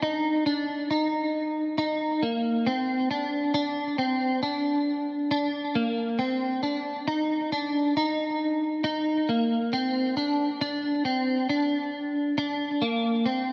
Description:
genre	dream pop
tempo	68 BPM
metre	4/4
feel	straight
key	unclear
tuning	A4 = 436 Hz
part	clean electric guitar	solo	0.0-13.5 s	Bb3 to Eb4	-27 LUFS	equal	ensemble chorus, tape echo
room	wet lush hall reverb, RT60 3.0 s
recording	none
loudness	-27 LUFS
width	mono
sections	0.0-13.5 A section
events	none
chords	none

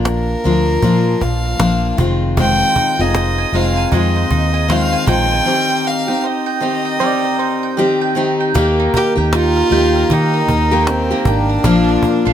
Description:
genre	acoustic pop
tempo	78 BPM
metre	4/4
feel	swing 60% on 16ths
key	Eb major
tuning	A4 = 439 Hz
part	picked steel-string acoustic guitar	accompaniment	0.0-12.3 s	Bb2 to G4	-17 LUFS	left 3 dB	none
part	vintage muted fingered electric bass	bass	0.0-12.3 s	F1 to Eb3	-18 LUFS	right 1 dB	none
part	warm violin	melody	0.1-12.3 s	C4 to G5	-18 LUFS	equal	none
part	cajon	drums	0.1-12.2 s	none	-19 LUFS	right 1 dB	none
part	bowl-back mandolin	arpeggios	2.4-12.3 s	G3 to Ab5	-23 LUFS	right 9 dB	none
part	direct-recorded clean electric guitar	second line	7.0-8.5 s	G4 to D5	-22 LUFS	right 5 dB	none
room	little or no reverb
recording	none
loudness	-13 LUFS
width	side -10 dB against mid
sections	0.0-8.6 A section; 8.6-12.3 B section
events	none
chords	0.0 Bb; 2.0 Fm7; 5.5 Cm; 8.6 Eb; 11.6 Bb

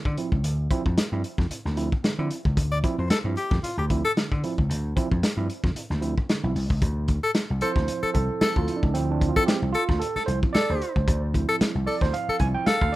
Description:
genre	funk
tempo	113 BPM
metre	4/4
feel	swing 56% on 16ths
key	D minor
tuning	A4 = 442 Hz
part	overdriven tine electric piano	stabs	0.0-13.0 s	D3 to G#5	-29 LUFS	right 4 dB	tape echo
part	vintage slap bass	bass	0.1-12.9 s	B1 to D3	-26 LUFS	equal	none
part	crunchy breakbeat drum kit	drums	0.1-12.9 s	hi-hat, kick drum, snare drum	-25 LUFS	equal	none
part	breathy tenor saxophone	second line	2.7-13.0 s	F4 to D5	-26 LUFS	left 3 dB	plate reverb
room	light reverb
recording	rough home demo mix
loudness	-22 LUFS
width	side -17 dB against mid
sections	0.0-6.8 A section; 6.8-13.0 B section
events	tine electric piano solo 6.8-13.0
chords	0.0 Dm9

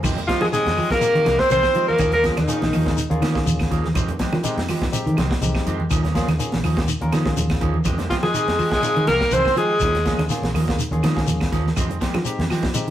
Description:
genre	afrobeat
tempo	123 BPM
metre	4/4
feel	straight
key	F minor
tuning	A4 = 442 Hz
part	mellow electric guitar	arpeggios	0.0-12.9 s	Eb3 to F3	-32 LUFS	left 5 dB	none
part	electric guitar at the edge of break-up	stabs	0.0-12.7 s	Eb3 to Ab4	-30 LUFS	right 5 dB	none
part	fingered electric bass	bass	0.0-12.9 s	Bb1 to F3	-24 LUFS	equal	none
part	tight funk drum kit	drums	0.0-12.9 s	crash cymbal, hi-hat, kick drum, snare drum	-26 LUFS	equal	none
part	claves	percussion	0.0-12.6 s	none	-37 LUFS	right 4 dB	none
part	congas	percussion	0.0-12.9 s	none	-28 LUFS	right 2 dB	none
part	shekere	percussion	0.0-12.9 s	none	-29 LUFS	left 1 dB	none
part	bright alto saxophone	melody	0.3-3.1, 8.1-10.3 s	Eb4 to C5	-20 LUFS	equal	slapback echo
part	growling tenor saxophone	second line	0.3-3.1, 8.1-10.3 s	Eb3 to C4	-24 LUFS	equal	none
part	barky tine electric piano	accompaniment	0.5-12.9 s	Ab3 to Bb4	-30 LUFS	left 2 dB	none
room	moderate studio reverb, RT60 0.6 s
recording	rough rehearsal-room recording, warm saturation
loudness	-18 LUFS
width	side -12 dB against mid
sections	0.0-12.9 A section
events	none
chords	0.0 Fm9; 2.0 Eb9sus4; 4.0 Fm9; 5.9 Eb9sus4; 7.9 Fm9; 9.8 Eb9sus4; 11.8 Fm9

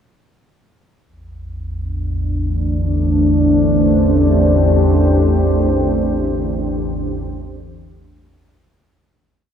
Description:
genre	dark ambient drone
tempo	free time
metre	none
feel	none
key	unclear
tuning	A4 = 441 Hz
part	deep dark ambient pad	sustained chords	2.3-8.8 s	A3 to C5	-16 LUFS	equal	chorus, built-in reverb
part	analog drone	drone	1.4-8.9 s	A1 to E2	-17 LUFS	equal	chorus
room	wet huge ambient reverb, RT60 8.4 s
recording	in a vast, echoing space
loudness	-14 LUFS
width	side -8 dB against mid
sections	1.1-8.8 A section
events	fade-out 5.0-8.8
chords	1.1 Am

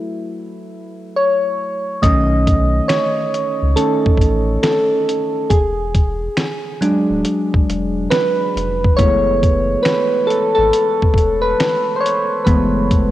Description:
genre	lo-fi hip hop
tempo	69 BPM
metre	4/4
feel	swing 64% on 16ths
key	F# minor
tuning	A4 = 440 Hz
part	soft electric-piano-like synth keys	accompaniment	0.0-13.1 s	D#3 to D#5	-16 LUFS	equal	chorus, phaser, cassette tape
part	warm sub bass	bass	2.0-13.1 s	D1 to C#2	-20 LUFS	equal	transformer saturation
part	dusty soul sampler-style drum kit	drums	2.0-13.1 s	finger snaps, hi-hat, kick drum, snare drum	-18 LUFS	equal	vintage 12-bit sampler grit, cassette tape
room	light reverb, digital ambience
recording	home recording on cassette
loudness	-14 LUFS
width	side -14 dB against mid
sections	0.0-2.0 A section; 2.0-13.1 B section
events	break 0.0-2.0; synth keys solo 0.0-2.0, 2.0-13.1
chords	0.0 F#m7; 2.0 B9; 5.5 E7; 9.0 F#m11

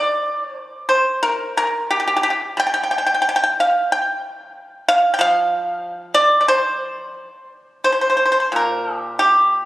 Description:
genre	chinese traditional, Chinese solo plucked strings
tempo	87-96 BPM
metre	2/4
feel	rubato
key	unclear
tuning	A4 = 442 Hz
part	pipa	solo	0.0-9.7 s	Bb2 to G5	-16 LUFS	equal	slapback echo
room	moderate concert hall reverb, RT60 2.2 s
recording	recorded on a phone in the room, club reverb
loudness	-16 LUFS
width	side -16 dB against mid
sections	0.0-7.9 A section; 7.9-9.7 B section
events	none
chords	none

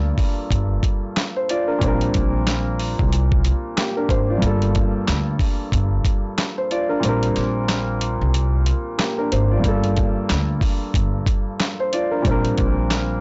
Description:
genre	hip hop, boom-bap hip-hop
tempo	92 BPM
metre	4/4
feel	swing 60% on 16ths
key	G minor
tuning	A4 = 436 Hz
part	warm baby grand piano	accompaniment	0.0-13.2 s	G2 to D5	-25 LUFS	equal	cassette tape, high-pass filter, low-pass filter
part	upright bass	bass	0.0-13.2 s	G1 to D2	-24 LUFS	equal	transformer saturation
part	dusty soul sampler-style drum kit	drums	0.2-13.1 s	handclaps, hi-hat, kick drum, snare drum	-24 LUFS	equal	none
room	little or no reverb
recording	blown-out, overdriven recording, overdrive, nothing above 7.8 kHz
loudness	-21 LUFS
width	mono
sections	0.0-13.2 A section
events	kick muted 7.0-9.6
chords	0.0 Gm7; 1.8 Bb69; 4.4 Gm7; 7.0 Bb69; 9.6 Gm7; 12.2 Bb69

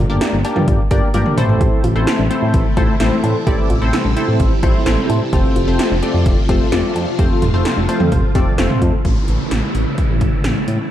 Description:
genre	synth-pop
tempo	129 BPM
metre	4/4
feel	straight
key	unclear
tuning	A4 = 440 Hz
part	soft round pluck	arpeggios	0.0-8.9 s	D4 to G4	-27 LUFS	right 2 dB	chorus, tape echo
part	smooth synth bass	bass	0.0-10.8 s	F1 to A2	-18 LUFS	equal	none
part	funky polysynth comp	accompaniment	0.1-8.9 s	A3 to D5	-20 LUFS	left 1 dB	chorus
part	80s electronic pad drums	drums	0.2-10.8 s	cowbell, hi-hat, kick drum, snare drum, toms	-17 LUFS	equal	gated reverb on snare and toms
part	phased string machine	sustained chords	1.6-10.9 s	C3 to F4	-22 LUFS	equal	ensemble chorus, phaser
part	downlifter	sound effects	9.0-10.9 s	none	-28 LUFS	left 1 dB	none
room	light reverb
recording	dark, warm production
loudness	-13 LUFS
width	side -11 dB against mid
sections	0.0-9.0 A section; 9.0-10.9 B section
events	drum fill 1.1-1.6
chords	0.0 Gm; 1.4 Am; 5.3 F; 9.0 A

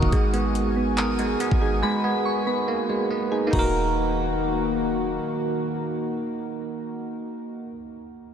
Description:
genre	hip hop, trap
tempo	141 BPM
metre	4/4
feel	half-time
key	Eb minor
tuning	A4 = 440 Hz
part	soft synth bell	second line	0.0-4.8 s	Bb5 to Eb6	-32 LUFS	left 1 dB	chorus, phaser, tape echo
part	bell-like tine electric piano	accompaniment	0.0-8.3 s	Eb3 to Bb4	-28 LUFS	right 3 dB	phaser, low-pass filter
part	dark analog pad	sustained chords	0.0-7.7 s	Eb3 to Ab5	-30 LUFS	left 1 dB	chorus
part	soft electric-piano-like synth keys	arpeggios	0.0-7.8 s	Ab3 to Bb4	-29 LUFS	equal	chorus, low-pass filter, tape echo
part	warm 808-style bass	bass	0.0-5.2 s	Eb1 to Ab1	-27 LUFS	equal	none
part	trap drum kit	drums	0.0-3.6 s	crash cymbal, handclaps, hi-hat, kick drum	-28 LUFS	equal	vintage 12-bit sampler grit
room	wet huge ambient reverb, RT60 7.5 s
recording	dreamy mix soaked in reverb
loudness	-22 LUFS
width	side -8 dB against mid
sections	0.0-3.5 A section; 3.5-6.9 B section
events	silent gap 1.8-3.5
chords	0.1 Abmadd9; 3.5 Ebm

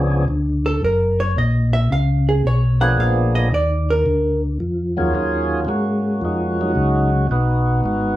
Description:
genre	soul jazz organ trio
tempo	111 BPM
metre	4/4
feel	swing 68% on 8ths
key	Eb minor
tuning	A4 = 440 Hz
part	percussive tonewheel organ	melody	0.0-8.2 s	Eb2 to Ab4	-20 LUFS	right 1 dB	slow rotary speaker
part	tonewheel organ	bass	0.0-8.2 s	Gb1 to Ab2	-18 LUFS	left 1 dB	chorus vibrato, slow rotary speaker
part	vintage hollow-body jazz guitar	accompaniment	0.7-4.4 s	Ab4 to Gb5	-21 LUFS	right 2 dB	none
room	wet studio reverb, RT60 0.6 s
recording	heard from further back in the room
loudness	-16 LUFS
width	side -14 dB against mid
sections	0.0-5.1 A section; 5.1-8.2 B section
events	hollow-body jazz guitar solo 0.0-5.1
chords	0.0 Db7b9; 0.8 Gb; 3.0 Bb7b9; 5.1 Ebm11; 7.3 Abm7

